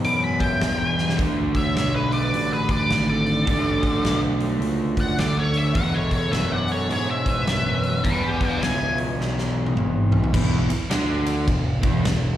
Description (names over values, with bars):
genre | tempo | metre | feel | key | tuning
blues rock power trio and southern rock | 105 BPM | 4/4 | swing 63% on 8ths | E mixolydian | A4 = 442 Hz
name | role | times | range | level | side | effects
octave-fuzz lead guitar | melody | 0.0-9.0 s | B4 to D6 | -25 LUFS | left 2 dB | wah, distortion, slapback echo
raw garage guitar | riff | 0.0-12.3 s | E2 to D4 | -24 LUFS | right 1 dB | overdrive, slapback echo
fuzz picked electric bass | bass | 0.0-12.4 s | E1 to G#2 | -26 LUFS | equal | overdrive
huge arena drum kit | drums | 0.0-12.2 s | crash cymbal, hi-hat, kick drum, ride cymbal, snare drum, toms | -26 LUFS | equal | none
biting lead guitar | second line | 0.1-9.0 s | G#4 to B5 | -33 LUFS | right 4 dB | overdrive, slapback echo, digital delay
room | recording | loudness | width
light reverb | live gig heard through the venue's PA, recital hall reverb | -19 LUFS | side -12 dB against mid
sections
0.0-10.3 A section; 10.3-12.4 B section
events
drum fill 0.9, 9.2-10.3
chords
0.0 E5; 1.2 D5; 5.8 E; 10.3 E5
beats
0.05 0.62 | 1.19 1.76 2.33 2.91 | 3.48 4.05 4.62 5.19 | 5.76 6.34 6.91 7.48 | 8.05 8.62 9.20 9.77 | 10.34 10.91 11.48 12.05